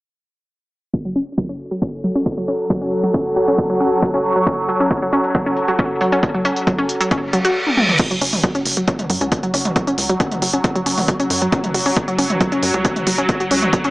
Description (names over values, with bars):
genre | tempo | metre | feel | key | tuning
driving peak-time techno | 136 BPM | 4/4 | straight | F# minor | A4 = 442 Hz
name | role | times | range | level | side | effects
swarming drone | drone | 2.1-13.9 s | F#3 | -24 LUFS | equal | built-in reverb, phaser, sidechain pumping
electronic kick drum | drums | 0.9-13.8 s | none | -21 LUFS | equal | none
techno drum kit | drums | 0.9-13.9 s | crash cymbal, hi-hat, toms | -21 LUFS | equal | sidechain pumping on hats, sidechain pumping on toms, sidechain pumping on cymbals
warbly tape-like pad | texture | 1.7-7.6 s | F#4 to A5 | -22 LUFS | equal | chorus, built-in reverb, sidechain pumping
analog pluck | riff | 1.1-13.9 s | F#3 to F#4 | -20 LUFS | equal | chorus, tube saturation, sidechain pumping, digital delay
reverse cymbal | sound effects | 7.3-8.0 s | none | -18 LUFS | right 1 dB | none
tight sequencer bass | bass | 8.2-13.7 s | F#1 to F#2 | -26 LUFS | equal | sidechain pumping
room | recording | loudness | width
moderate digital room reverb, RT60 1.1 s | low-pass filter, small speaker sound | -16 LUFS | side -20 dB against mid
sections
0.9-8.0 A section; 8.0-13.9 B section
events
filter sweep on synth arpeggio sound 0.9-8.0, 8.0-13.9; filter sweep 0.9-8.0; reverse cymbal 7.3-8.0; drum fill 7.7-8.0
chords
0.9 F#m; 8.0 F#5